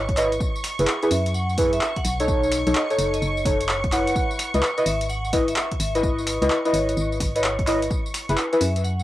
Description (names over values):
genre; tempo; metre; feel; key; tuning
UK garage, two-step garage; 128 BPM; 4/4; swing 65% on 16ths; C# minor; A4 = 438 Hz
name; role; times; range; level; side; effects
vibraphone with medium hard mallets; melody; 0.0-9.0 s; C#5 to F#5; -30 LUFS; right 1 dB; cassette tape, tape echo
soft string machine; sustained chords; 0.0-9.0 s; C#6; -33 LUFS; equal; ensemble chorus, sidechain pumping, cassette tape
organ-like FM bass; bass; 0.0-9.0 s; F#1 to F#2; -26 LUFS; equal; sidechain pumping
electronic kick drum; drums; 0.1-8.0 s; none; -27 LUFS; equal; cassette tape
punchy analog drum machine; drums; 0.1-9.0 s; finger snaps, handclaps, hi-hat, tambourine; -28 LUFS; equal; cassette tape
deep mellow chord stab; stabs; 0.2-8.6 s; D#4 to F#5; -23 LUFS; equal; chorus, cassette tape, tape echo
room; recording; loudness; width
light reverb; home recording on cassette; -20 LUFS; side -14 dB against mid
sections
0.0-9.0 A section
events
none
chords
0.4 F#9sus4; 2.0 B9; 4.2 C#m9; 7.9 F#9sus4